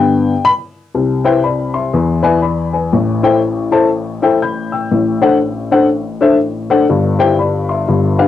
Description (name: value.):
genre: gospel.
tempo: 121 BPM.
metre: 4/4.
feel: swing 62% on 8ths.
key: C major.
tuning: A4 = 444 Hz.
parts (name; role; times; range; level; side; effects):
dark upright piano; solo; 0.0-8.3 s; G1 to G6; -11 LUFS; left 3 dB; cassette tape.
room: wet booth ambience, RT60 0.2 s.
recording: home recording on cassette.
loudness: -12 LUFS.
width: side -11 dB against mid.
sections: 1.0-8.3 A section.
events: none.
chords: 0.0 G; 1.0 Cmaj7; 1.9 E7; 2.9 Am7; 4.9 D7/A; 6.9 C/G.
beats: 0.46 | 0.96 1.45 1.95 2.44 | 2.94 3.43 3.93 4.42 | 4.92 5.41 5.91 6.40 | 6.90 7.39 7.88.